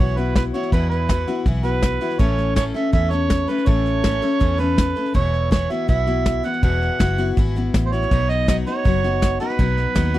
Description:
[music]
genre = honky-tonk and classic country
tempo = 162 BPM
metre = 4/4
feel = straight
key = unclear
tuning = A4 = 442 Hz
[part]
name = mellow harmonica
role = second line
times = 0.0-10.2 s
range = B4 to F#5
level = -24 LUFS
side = right 6 dB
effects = none
[part]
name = picked steel-string acoustic guitar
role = accompaniment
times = 0.0-10.2 s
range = E2 to A4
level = -24 LUFS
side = left 4 dB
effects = none
[part]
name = vintage muted fingered electric bass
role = bass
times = 0.0-10.2 s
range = E1 to E2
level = -22 LUFS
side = equal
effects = none
[part]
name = soft brush drum kit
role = drums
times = 0.2-10.2 s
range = hi-hat, kick drum, snare drum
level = -20 LUFS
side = equal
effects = none
[sound]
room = studio ambience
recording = dry, close 1970s-style studio recording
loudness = -17 LUFS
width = side -15 dB against mid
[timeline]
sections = 0.0-10.2 A section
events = harmonica solo 0.0-10.2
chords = 0.0 Esus2; 2.2 A; 5.1 Esus2; 8.1 B

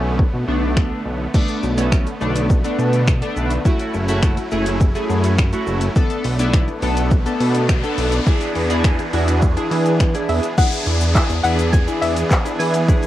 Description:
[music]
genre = dance-pop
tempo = 104 BPM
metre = 4/4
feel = straight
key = unclear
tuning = A4 = 440 Hz
[part]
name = chorused polysynth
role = accompaniment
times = 0.0-13.1 s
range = A3 to A4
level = -23 LUFS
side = equal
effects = sidechain pumping
[part]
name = supersaw chords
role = sustained chords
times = 0.0-13.1 s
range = D3 to C#5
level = -26 LUFS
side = right 1 dB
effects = sidechain pumping
[part]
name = chorused synth bass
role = bass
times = 0.0-13.1 s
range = F#1 to E3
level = -20 LUFS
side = equal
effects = sidechain pumping
[part]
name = deep house drum kit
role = drums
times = 0.2-13.1 s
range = crash cymbal, finger snaps, handclaps, hi-hat, kick drum, shaker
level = -18 LUFS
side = equal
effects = cassette tape
[part]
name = mallet-like synth pluck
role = arpeggios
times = 1.3-10.5 s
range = D3 to E5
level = -34 LUFS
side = left 9 dB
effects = none
[part]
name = noise sweep and downlifter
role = sound effects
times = 6.7-13.1 s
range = none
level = -29 LUFS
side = left 1 dB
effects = none
[part]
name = soft round pluck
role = melody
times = 10.3-13.1 s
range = E5 to G#5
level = -23 LUFS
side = left 2 dB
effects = chorus, cassette tape
[part]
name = tube shaker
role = percussion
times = 10.6-13.1 s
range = none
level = -44 LUFS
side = left 12 dB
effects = none
[sound]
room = light reverb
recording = home recording on cassette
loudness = -16 LUFS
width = side -14 dB against mid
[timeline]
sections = 0.0-1.3 A section; 1.3-10.6 B section; 10.6-13.1 C section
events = noise sweep 6.7-10.6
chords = 0.0 Bm7; 3.7 F#m7; 6.0 Bm7; 8.3 E7

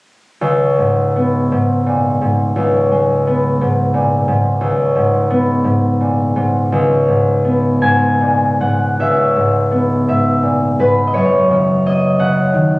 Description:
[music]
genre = classical, solo harp piece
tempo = 49-59 BPM (dotted quarters)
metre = 6/8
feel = rubato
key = C# dorian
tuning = A4 = 443 Hz
[part]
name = concert harp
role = solo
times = 0.4-12.8 s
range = C#2 to G#5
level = -12 LUFS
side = equal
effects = none
[sound]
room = moderate scoring stage reverb, RT60 2.1 s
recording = recorded on a phone in the room, studio reverb, compression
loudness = -12 LUFS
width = side -22 dB against mid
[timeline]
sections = 0.4-9.0 A section; 9.0-12.8 B section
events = none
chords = 0.4 C#5; 11.1 F#13

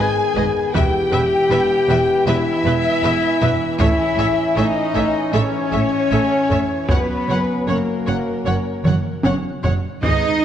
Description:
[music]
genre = cinematic, epic orchestral film score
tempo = 78 BPM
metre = 4/4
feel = straight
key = unclear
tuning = A4 = 439 Hz
[part]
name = warm studio violin section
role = melody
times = 0.0-10.4 s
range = D#5 to F#5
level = -29 LUFS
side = left 4 dB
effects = none
[part]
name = large flute ensemble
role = second line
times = 0.0-9.2 s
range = A#4 to G#5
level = -26 LUFS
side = left 2 dB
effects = none
[part]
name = warm symphonic violin section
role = second line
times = 0.0-10.4 s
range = A#4 to G#5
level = -28 LUFS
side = left 2 dB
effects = none
[part]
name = warm symphonic viola section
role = accompaniment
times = 0.0-10.4 s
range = D#4 to D#5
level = -28 LUFS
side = right 1 dB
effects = none
[part]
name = dark trombone section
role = sustained chords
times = 0.0-10.4 s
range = D#3 to D#4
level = -26 LUFS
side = right 3 dB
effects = none
[part]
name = mellow French horn section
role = sustained chords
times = 0.0-10.3 s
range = A#3 to B4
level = -20 LUFS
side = left 2 dB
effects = none
[part]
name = clear symphonic cello section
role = bass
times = 0.0-10.4 s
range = E2 to D#4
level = -25 LUFS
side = right 3 dB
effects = none
[part]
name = warm symphonic double bass section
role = bass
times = 0.0-10.4 s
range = E1 to A1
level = -25 LUFS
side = right 3 dB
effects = none
[part]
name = taiko ensemble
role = drums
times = 0.4-10.4 s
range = none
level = -22 LUFS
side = equal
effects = none
[part]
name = timpani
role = percussion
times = 10.0-10.4 s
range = G#2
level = -25 LUFS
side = left 1 dB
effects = none
[sound]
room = wet concert hall reverb, RT60 2.0 s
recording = worn, warbling old tape, cassette tape, warbly pitch drift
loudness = -16 LUFS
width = side -10 dB against mid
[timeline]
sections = 0.0-10.0 A section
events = drum fill 8.9-10.0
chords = 0.0 G#m; 0.7 Em; 3.8 A; 6.9 F#

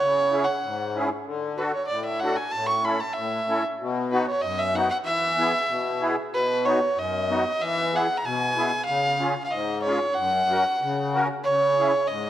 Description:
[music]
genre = alpine folk, alpine dance band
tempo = 94 BPM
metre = 2/4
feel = straight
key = E major, B major from 6.3 s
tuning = A4 = 445 Hz
[part]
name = rich fiddle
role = melody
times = 0.0-12.3 s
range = B4 to C#6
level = -24 LUFS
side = right 1 dB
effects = none
[part]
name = musette accordion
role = accompaniment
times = 0.0-12.3 s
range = F#2 to A#4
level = -26 LUFS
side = left 2 dB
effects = none
[sound]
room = moderate concert hall reverb, RT60 2.2 s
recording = dark, warm production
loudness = -22 LUFS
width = side -12 dB against mid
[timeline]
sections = 0.0-6.3 A section; 6.3-12.3 B section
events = none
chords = 0.0 C#m; 1.3 D; 2.5 A; 3.8 B; 5.1 E; 6.3 B; 7.6 E; 8.9 C#; 10.2 F#; 11.4 C#m

